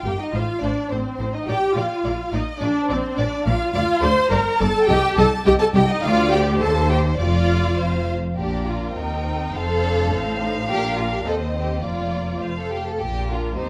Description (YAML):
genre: quick classical-period movement for string orchestra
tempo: 105 BPM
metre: 2/4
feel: straight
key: Bb major from 3.7 s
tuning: A4 = 436 Hz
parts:
  - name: warm symphonic violin section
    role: second line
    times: 0.0-13.7 s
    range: Eb4 to C6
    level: -28 LUFS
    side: equal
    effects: none
  - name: warm symphonic viola section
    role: accompaniment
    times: 0.0-13.7 s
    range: A3 to D5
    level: -25 LUFS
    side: equal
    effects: none
  - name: warm symphonic violin section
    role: melody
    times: 0.1-13.7 s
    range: Bb4 to G5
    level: -32 LUFS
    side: equal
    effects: none
  - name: rich symphonic double bass section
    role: bass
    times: 0.1-13.7 s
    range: F1 to Eb2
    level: -28 LUFS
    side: equal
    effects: none
  - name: warm symphonic cello section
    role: bass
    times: 0.1-13.7 s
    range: C2 to Bb2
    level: -28 LUFS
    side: equal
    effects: none
room: moderate recital hall reverb, RT60 1.5 s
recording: none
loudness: -21 LUFS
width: mono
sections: 0.0-8.4 A section; 8.4-13.7 B section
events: none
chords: 0.3 Amadd11; 1.5 Bb; 3.7 Dm; 4.3 Gm; 4.9 Cm; 6.0 Dmadd11; 6.6 Cm/Eb; 7.2 Dm/F; 8.4 Bb; 9.0 Cm/Eb; 9.5 F; 10.7 Bb; 11.3 Eb; 11.8 Bb/F; 12.4 F; 13.0 Bb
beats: | 0.34 0.91 | 1.48 2.05 | 2.61 3.18 | 3.75 4.31 | 4.89 5.46 | 6.03 6.61 | 7.20 7.79 | 8.38 8.96 | 9.54 10.12 | 10.70 11.26 | 11.84 12.42 | 13.00 13.57